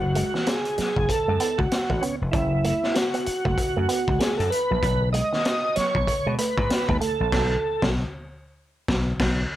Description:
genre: funk.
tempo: 96 BPM.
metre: 4/4.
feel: swing 60% on 16ths.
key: unclear.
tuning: A4 = 442 Hz.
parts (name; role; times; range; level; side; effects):
tonewheel organ; melody; 0.0-7.9 s; C#4 to D#5; -25 LUFS; right 2 dB; chorus vibrato, slow rotary speaker.
electric guitar with an envelope filter; riff; 0.0-7.2 s; D#3 to C#4; -30 LUFS; right 5 dB; none.
vintage slap bass; bass; 0.0-9.4 s; E#1 to B2; -25 LUFS; left 1 dB; none.
raw garage drum kit; drums; 0.2-9.4 s; crash cymbal, hi-hat, kick drum, snare drum; -26 LUFS; left 1 dB; none.
room: light reverb, small room ambience.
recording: none.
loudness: -21 LUFS.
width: side -13 dB against mid.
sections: 0.0-9.6 A section.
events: band accent 7.3-9.6.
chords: 0.0 F#m9; 4.8 B13.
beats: 0.47 1.09 1.71 | 2.34 2.96 3.58 4.21 | 4.83 5.46 6.08 6.70 | 7.33 7.95 8.57 9.20.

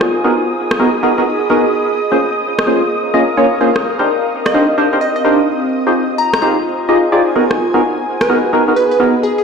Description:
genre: UK garage, two-step garage.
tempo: 128 BPM.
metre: 4/4.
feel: swing 64% on 16ths.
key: unclear.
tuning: A4 = 440 Hz.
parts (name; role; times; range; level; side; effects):
soft string machine; sustained chords; 0.0-9.4 s; Eb6; -25 LUFS; equal; ensemble chorus.
electronic rim click; drums; 0.0-8.3 s; none; -16 LUFS; equal; low-pass filter on hats, studio reverb, low-pass filter on snare.
ethereal airy pad; texture; 0.0-9.4 s; C4 to Cb6; -18 LUFS; equal; ensemble chorus, built-in reverb.
percussive organ stab; stabs; 0.2-9.1 s; Bb3 to Eb5; -14 LUFS; equal; wide subtle chorus, tape echo.
glassy wavetable pluck; melody; 4.5-9.4 s; Ab4 to Bb5; -17 LUFS; right 1 dB; chorus, tape echo.
room: wet small room reverb, RT60 0.6 s.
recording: played on a big sound system in a bare room, stone room reverb.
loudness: -12 LUFS.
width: side -5 dB against mid.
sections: 0.0-9.4 A section.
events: none.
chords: 0.0 Abm9; 2.0 Bbm9; 3.8 Cm9; 5.5 Fm9; 7.4 Abm9.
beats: | 0.09 0.56 1.03 1.50 | 1.97 2.44 2.90 3.37 | 3.84 4.31 4.78 5.25 | 5.72 6.18 6.65 7.12 | 7.59 8.06 8.53 9.00.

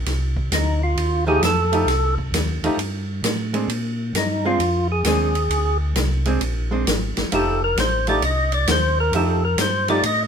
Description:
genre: soul jazz organ trio.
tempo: 132 BPM.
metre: 4/4.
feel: swing 66% on 8ths.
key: F mixolydian.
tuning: A4 = 440 Hz.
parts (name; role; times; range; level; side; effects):
mellow tonewheel organ; bass; 0.0-10.3 s; F1 to Bb2; -22 LUFS; equal; slow rotary speaker.
open jazz drum kit; drums; 0.1-10.2 s; hi-hat, kick drum, ride cymbal, snare drum; -25 LUFS; equal; none.
percussive tonewheel organ; melody; 0.5-10.2 s; Eb4 to Eb5; -21 LUFS; equal; slow rotary speaker, overdrive.
archtop guitar, miked and amplified; accompaniment; 1.3-10.0 s; F3 to G4; -23 LUFS; right 1 dB; none.
room: light reverb.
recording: minimal, uncompressed stereo recording.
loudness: -18 LUFS.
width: side -7 dB against mid.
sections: 0.0-10.3 A section.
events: tonewheel organ solo 0.0-10.3.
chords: 0.0 F9; 3.7 Bb9; 7.3 F9.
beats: | 0.06 0.52 0.97 1.42 | 1.88 2.33 2.78 3.24 | 3.69 4.14 4.60 5.05 | 5.50 5.96 6.41 6.87 | 7.32 7.77 8.23 8.68 | 9.13 9.59 10.04.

